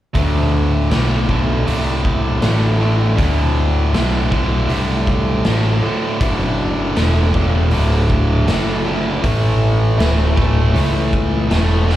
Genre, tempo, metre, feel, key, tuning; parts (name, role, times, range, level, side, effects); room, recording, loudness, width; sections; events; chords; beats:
blues rock power trio and southern rock; 79 BPM; 4/4; straight; D mixolydian; A4 = 439 Hz
distorted electric guitar; riff; 0.1-12.0 s; D2 to A3; -19 LUFS; equal; overdrive, slapback echo
fuzz picked electric bass; bass; 0.1-12.0 s; D1 to D2; -17 LUFS; equal; overdrive
raw garage drum kit; drums; 0.2-12.0 s; hi-hat, kick drum, snare drum; -21 LUFS; equal
light reverb; live gig heard through the venue's PA, club reverb; -14 LUFS; side -13 dB against mid
0.1-12.0 A section
0.1 D7; 9.2 A
| 0.15 0.91 1.67 2.43 | 3.19 3.94 4.70 5.46 | 6.21 6.97 7.73 8.48 | 9.24 9.99 10.75 11.51